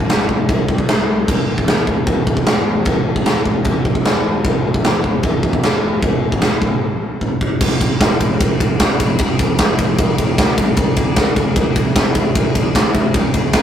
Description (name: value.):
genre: heavy metal.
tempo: 152 BPM.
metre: 4/4.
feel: straight.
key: unclear.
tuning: A4 = 440 Hz.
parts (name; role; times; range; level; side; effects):
fuzz picked electric bass; bass; 0.0-13.6 s; E1 to C3; -24 LUFS; equal; overdrive.
big rock drum kit; drums; 0.1-13.6 s; china cymbal, crash cymbal, kick drum, ride cymbal, snare drum; -14 LUFS; equal; none.
room: light reverb.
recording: rough rehearsal-room recording.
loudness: -14 LUFS.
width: side -9 dB against mid.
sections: 0.0-7.6 A section; 7.6-13.6 B section.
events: break 6.8-7.6; drum fill 7.2-7.6.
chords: none.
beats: 0.09 0.48 0.88 | 1.28 1.67 2.07 2.46 | 2.86 3.26 3.65 4.05 | 4.45 4.84 5.24 5.63 | 6.03 6.43 6.82 7.22 | 7.61 8.01 8.40 8.80 | 9.20 9.59 9.98 10.38 | 10.78 11.17 11.56 11.96 | 12.36 12.75 13.14 13.54.